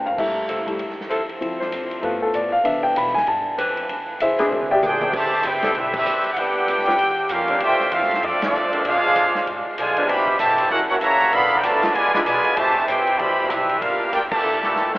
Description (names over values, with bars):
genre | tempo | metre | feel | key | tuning
jazz, big band swing | 194 BPM | 4/4 | swing 60% on 8ths | A minor | A4 = 440 Hz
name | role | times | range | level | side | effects
warm baby grand piano | accompaniment | 0.0-4.8 s | E3 to B5 | -22 LUFS | left 1 dB | none
upright bass | bass | 0.0-15.0 s | G1 to C3 | -40 LUFS | equal | none
swinging big-band drum kit | drums | 0.1-15.0 s | crash cymbal, hi-hat, kick drum, ride cymbal, snare drum, toms | -31 LUFS | equal | none
dark saxophone section | sustained chords | 0.5-14.9 s | Bb2 to C5 | -29 LUFS | equal | none
bright trumpet section | melody | 4.8-15.0 s | G3 to B5 | -19 LUFS | equal | none
muted trombone section | second line | 4.8-15.0 s | Bb2 to G#4 | -23 LUFS | right 1 dB | none
room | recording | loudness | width
wet cathedral reverb, RT60 5.3 s | in a vast, echoing space, telephone sound | -17 LUFS | side -19 dB against mid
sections
0.0-5.1 A section; 5.1-15.0 B section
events
drum fill 0.0, 4.5-5.1, 14.7; grand piano solo 0.0-5.1; band accent 5.9, 8.4, 14.3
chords
0.2 Fmaj7; 1.4 Dm9; 2.0 G9; 2.7 Cmaj9; 3.9 E7alt; 5.1 Am9; 6.4 Em9; 7.0 D#13; 7.6 Dm9; 8.8 Bb9; 10.1 Am11; 10.7 F#7; 11.3 Bm7b5; 11.9 E7b9; 12.6 Am9; 13.8 Gm7; 14.4 C13